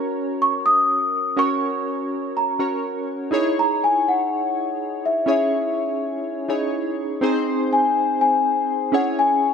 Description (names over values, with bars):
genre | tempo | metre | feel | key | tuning
pop | 123 BPM | 4/4 | straight | F# mixolydian | A4 = 440 Hz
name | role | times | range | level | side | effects
celesta | melody | 0.0-9.5 s | E5 to D#6 | -20 LUFS | left 2 dB | none
chorused retro synth keys | accompaniment | 0.0-9.5 s | B#3 to C#5 | -23 LUFS | right 1 dB | tremolo
room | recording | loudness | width
moderate plate reverb, RT60 2.9 s | nothing above 10.5 kHz | -19 LUFS | side -6 dB against mid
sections
0.0-7.2 A section; 7.2-9.5 B section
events
none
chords
0.0 F#; 3.3 C#madd9; 7.2 G#; 8.9 C#m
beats
0.40 0.89 | 1.37 1.86 2.35 2.84 | 3.32 3.81 4.30 4.79 | 5.28 5.76 6.25 6.74 | 7.23 7.71 8.20 8.69 | 9.18